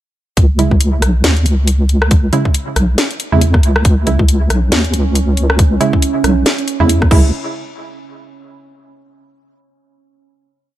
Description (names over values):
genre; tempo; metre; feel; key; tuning
deep dubstep; 138 BPM; 4/4; swing 58% on 16ths, half-time; C# minor; A4 = 439 Hz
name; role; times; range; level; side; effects
deep soft wobble bass; bass; 0.4-7.3 s; B1 to E2; -13 LUFS; equal; chorus
electronic kick drum; drums; 0.4-7.2 s; none; -12 LUFS; equal; none
garage drum kit; drums; 0.4-7.2 s; crash cymbal, hi-hat, rim click, snare drum; -18 LUFS; left 1 dB; none
filtered dub chord stab; stabs; 0.6-7.3 s; C#3 to E4; -18 LUFS; right 3 dB; chorus, dub echo
deep dark ambient pad; sustained chords; 4.6-7.1 s; C#4; -22 LUFS; right 7 dB; chorus, built-in reverb
room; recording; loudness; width
little or no reverb; none; -11 LUFS; side -13 dB against mid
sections
0.4-7.3 drop; 7.3-9.1 final hit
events
drop 0.4-7.3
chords
0.4 C#m; 7.3 N.C.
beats
| 0.37 0.81 1.24 1.68 | 2.11 2.54 2.98 3.41 | 3.85 4.28 4.72 5.15 | 5.59 6.02 6.46 6.89